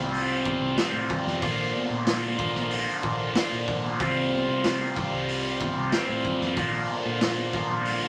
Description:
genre	psychedelic rock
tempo	93 BPM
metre	4/4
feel	straight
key	unclear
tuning	A4 = 440 Hz
part	hand-pumped harmonium	sustained chords	0.0-8.1 s	G3 to F5	-36 LUFS	equal	none
part	overdriven electric guitar	riff	0.0-8.1 s	Bb2 to F4	-29 LUFS	equal	phaser
part	picked electric bass	bass	0.0-8.0 s	Bb1 to C3	-37 LUFS	equal	none
part	raw garage drum kit	drums	0.1-8.0 s	hi-hat, kick drum, snare drum	-33 LUFS	equal	none
part	congas	percussion	0.5-8.0 s	none	-42 LUFS	equal	none
room	moderate studio reverb, RT60 0.8 s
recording	vinyl crackle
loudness	-27 LUFS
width	mono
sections	0.0-8.1 A section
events	none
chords	0.0 Csus4; 1.4 Bb; 4.0 Csus4; 6.6 Bb

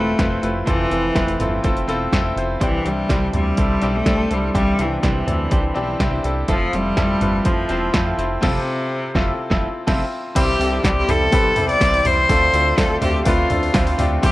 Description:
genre	piano-driven pop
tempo	124 BPM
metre	4/4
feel	straight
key	C major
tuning	A4 = 440 Hz
part	clear cello	melody	0.0-14.3 s	C3 to D5	-21 LUFS	left 1 dB	none
part	bright grand piano	accompaniment	0.0-14.3 s	G2 to D5	-23 LUFS	left 2 dB	none
part	direct-recorded clean electric guitar	riff	0.0-14.3 s	C3 to C5	-27 LUFS	right 4 dB	spring reverb
part	chorused synth bass	bass	0.0-14.3 s	E1 to D2	-24 LUFS	equal	none
part	punchy analog drum machine	drums	0.2-14.3 s	crash cymbal, hi-hat, kick drum, snare drum, toms	-21 LUFS	equal	none
room	light reverb, digital ambience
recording	worn, warbling old tape, cassette tape, warbly pitch drift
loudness	-16 LUFS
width	side -17 dB against mid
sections	0.0-10.4 A section; 10.4-14.3 B section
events	band accent 8.4-10.4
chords	0.0 Fmaj7; 2.6 Cadd9; 6.5 Fmaj7; 10.4 C; 12.3 Dm7

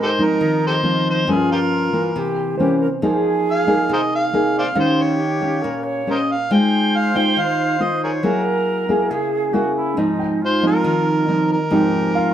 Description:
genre	bossa nova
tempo	138 BPM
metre	4/4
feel	straight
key	Ab major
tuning	A4 = 442 Hz
part	overdriven harmonica	melody	0.0-12.3 s	F4 to G5	-21 LUFS	equal	none
part	silver concert flute	second line	0.0-12.3 s	Eb4 to Db5	-24 LUFS	right 2 dB	none
part	nylon-string guitar	accompaniment	0.0-12.3 s	G2 to C5	-18 LUFS	equal	none
part	warm grand piano	accompaniment	0.0-6.5, 10.2-12.3 s	Bb4 to G5	-27 LUFS	right 2 dB	none
room	wet studio reverb, RT60 0.6 s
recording	heard from further back in the room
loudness	-16 LUFS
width	side -10 dB against mid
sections	0.0-12.3 A section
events	none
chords	0.0 Ab6; 1.3 Gm7b5; 2.1 C7b9; 3.0 Fm7; 4.8 Eb13; 6.5 Ab6; 8.2 Gb9; 10.0 Ab6

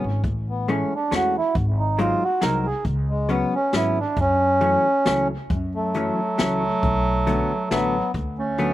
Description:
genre	musette waltz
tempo	136 BPM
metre	3/4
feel	swing 55% on 8ths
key	F# minor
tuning	A4 = 440 Hz
part	mellow accordion	melody	0.0-8.7 s	G#3 to A#4	-22 LUFS	right 1 dB	slapback echo
part	vintage hollow-body jazz guitar	accompaniment	0.0-8.7 s	D3 to D#4	-26 LUFS	left 2 dB	slapback echo
part	upright bass	bass	0.0-8.7 s	G#1 to F#2	-26 LUFS	equal	none
part	jazz brush drum kit	drums	0.2-8.7 s	hi-hat, kick drum, snare drum	-27 LUFS	left 1 dB	none
part	bright clarinet	second line	5.8-8.7 s	F#3 to A3	-26 LUFS	right 4 dB	none
room	little or no reverb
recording	recorded outdoors, with no room sound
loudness	-19 LUFS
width	side -14 dB against mid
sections	0.0-8.7 A section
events	none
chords	0.2 Amaj7; 1.6 G#7; 2.9 C#7sus4; 4.2 F#m7; 6.8 Bm7; 8.2 D6

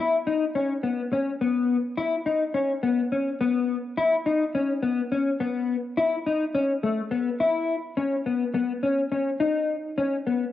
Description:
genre	progressive instrumental, progressive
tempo	210 BPM (eighths)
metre	7/8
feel	straight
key	C# minor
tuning	A4 = 437 Hz
part	mellow electric guitar	solo	0.0-10.4 s	A3 to E4	-23 LUFS	left 3 dB	analog chorus, cassette tape
room	wet spring reverb, RT60 1.8 s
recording	home recording on cassette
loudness	-23 LUFS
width	side -12 dB against mid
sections	0.0-7.4 A section; 7.4-10.5 B section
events	none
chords	none

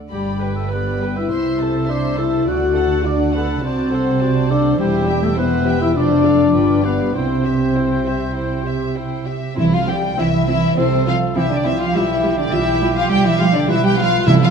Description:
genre	quick classical-period movement for symphony orchestra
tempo	102 BPM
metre	4/4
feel	rubato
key	C major from 4.8 s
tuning	A4 = 441 Hz
part	warm chamber violin section	melody	0.1-14.5 s	C5 to C6	-25 LUFS	left 4 dB	none
part	mellow oboe	second line	0.1-14.5 s	G4 to F#5	-27 LUFS	right 1 dB	none
part	warm chamber violin section	second line	0.1-14.5 s	C4 to F#5	-28 LUFS	left 3 dB	none
part	dark chamber viola section	accompaniment	0.1-14.3 s	G3 to C5	-26 LUFS	right 2 dB	none
part	mellow French horn section	sustained chords	0.1-14.5 s	G3 to G4	-20 LUFS	left 4 dB	none
part	dark chamber cello section	bass	0.1-14.5 s	E2 to G3	-22 LUFS	right 4 dB	none
part	warm chamber double bass section	bass	0.1-14.5 s	E1 to D2	-24 LUFS	right 6 dB	none
part	large flute ensemble	second line	9.6-14.5 s	C5 to G5	-25 LUFS	equal	none
part	timpani	percussion	9.6-10.4, 14.3-14.5 s	C3	-20 LUFS	right 2 dB	none
room	moderate concert hall reverb, RT60 2.4 s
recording	dark, warm production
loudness	-15 LUFS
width	side -6 dB against mid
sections	0.0-9.6 A section; 9.6-14.5 B section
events	none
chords	0.1 G; 1.3 Am/C; 2.5 D; 3.6 D7/C; 4.8 C/E; 6.0 Dm7/F; 6.6 G7; 7.2 C; 11.9 G7/B

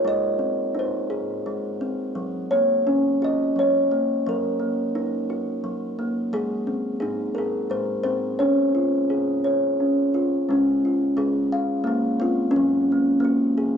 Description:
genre	children's music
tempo	86 BPM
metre	3/4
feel	straight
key	Db major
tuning	A4 = 440 Hz
part	kalimba	solo	0.0-13.8 s	Gb3 to F5	-20 LUFS	equal	none
room	moderate concert hall reverb, RT60 1.9 s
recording	worn, warbling old tape, cassette tape, warbly pitch drift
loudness	-20 LUFS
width	side -7 dB against mid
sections	0.0-10.5 A section; 10.5-13.8 A section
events	none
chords	0.0 Ab; 2.2 Gb; 4.3 Ebm/Gb; 6.3 Ab; 8.4 Db; 12.6 Gbadd9

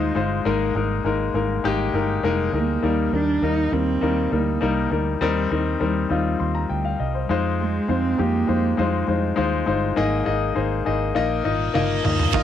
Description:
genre	piano-driven pop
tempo	101 BPM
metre	4/4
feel	straight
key	Eb major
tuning	A4 = 440 Hz
part	dark cello	melody	0.0-9.7 s	Ab3 to Eb4	-25 LUFS	right 4 dB	cassette tape
part	clear baby grand piano	accompaniment	0.0-12.4 s	Ab2 to C6	-22 LUFS	left 6 dB	cassette tape
part	vintage muted fingered electric bass	bass	0.0-12.4 s	F1 to F2	-26 LUFS	right 3 dB	none
part	reverse cymbal and impact	sound effects	11.4-12.4 s	none	-29 LUFS	right 7 dB	none
part	modern studio drum kit	drums	11.8-12.4 s	crash cymbal, kick drum, toms	-23 LUFS	right 2 dB	cassette tape
part	direct-recorded clean electric guitar	riff	12.3-12.4 s	Eb3 to F4	-22 LUFS	right 11 dB	spring reverb, cassette tape
room	light reverb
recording	home recording on cassette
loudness	-20 LUFS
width	side -10 dB against mid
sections	0.0-12.3 A section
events	reverse cymbal 11.4-12.3; drum fill 11.7-12.3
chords	0.5 Absus2; 2.8 Eb; 5.2 Cm7/Eb; 7.3 Fm7; 10.0 Absus2; 11.2 Bbsus4

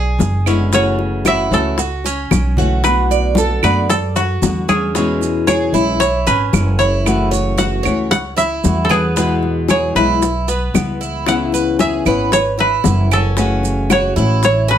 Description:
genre	latin, Cuban son and guajira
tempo	114 BPM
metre	4/4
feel	straight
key	unclear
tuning	A4 = 440 Hz
part	koto	melody	0.0-14.8 s	F#4 to F#5	-17 LUFS	right 1 dB	none
part	Cuban tres	arpeggios	0.0-14.8 s	B3 to D5	-22 LUFS	right 5 dB	none
part	upright bass	bass	0.0-14.8 s	F#1 to F#2	-19 LUFS	right 1 dB	none
part	bongos	percussion	0.2-14.8 s	none	-22 LUFS	left 6 dB	none
part	congas	percussion	0.2-14.8 s	none	-23 LUFS	left 2 dB	none
part	maracas	percussion	0.2-14.7 s	none	-28 LUFS	right 10 dB	none
part	flamenco guitar	accompaniment	0.5-14.5 s	B2 to F#4	-19 LUFS	left 4 dB	none
part	claves	percussion	0.5-14.2 s	none	-24 LUFS	right 9 dB	none
room	moderate studio reverb, RT60 0.7 s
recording	none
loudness	-13 LUFS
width	side -9 dB against mid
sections	0.0-2.8 A section; 2.8-14.8 B section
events	drum fill 2.3-2.8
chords	0.0 E7; 0.7 F#m7; 2.8 Bm7; 5.0 E6; 7.1 F#m7; 9.2 E; 11.3 C#m7; 13.4 F#m7

